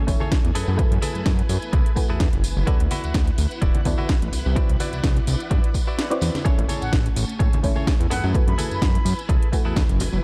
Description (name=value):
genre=filtered disco house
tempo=127 BPM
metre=4/4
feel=swing 54% on 16ths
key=unclear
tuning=A4 = 444 Hz
part: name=muted clav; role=accompaniment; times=0.0-10.2 s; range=A3 to G#5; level=-33 LUFS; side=equal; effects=phaser, sidechain pumping, low-pass filter
part: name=string machine, full ensemble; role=sustained chords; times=0.0-10.2 s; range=A3 to G#5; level=-37 LUFS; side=equal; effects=ensemble chorus, vintage 12-bit sampler grit, sidechain pumping, low-pass filter
part: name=direct-recorded clean electric guitar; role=riff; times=0.0-10.0 s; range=E4 to D5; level=-36 LUFS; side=equal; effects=sidechain pumping, low-pass filter
part: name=fat analog bass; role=bass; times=0.1-10.2 s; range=D1 to A2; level=-26 LUFS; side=equal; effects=sidechain pumping, low-pass filter
part: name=electronic kick drum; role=drums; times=0.1-9.9 s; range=none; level=-23 LUFS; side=equal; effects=none
part: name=house drum kit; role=drums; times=0.1-10.1 s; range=hi-hat, snare drum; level=-33 LUFS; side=equal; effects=sidechain pumping on hats
part: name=tambourine and congas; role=percussion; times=0.1-10.2 s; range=none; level=-36 LUFS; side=equal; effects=sidechain pumping on perc, low-pass filter on perc
part: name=bright reedy concert flute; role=melody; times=6.8-9.2 s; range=F#5 to B5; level=-35 LUFS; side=equal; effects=vintage 12-bit sampler grit, sidechain pumping, low-pass filter, dub echo
room=little or no reverb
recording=dark, warm production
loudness=-21 LUFS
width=mono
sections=0.0-10.2 A section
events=kick drops out 6.0-6.5; drum fill 6.2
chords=0.0 Amaj7; 0.6 F#m11; 2.7 D69; 4.6 Cmaj9#11; 6.5 Amaj7; 8.1 F#m11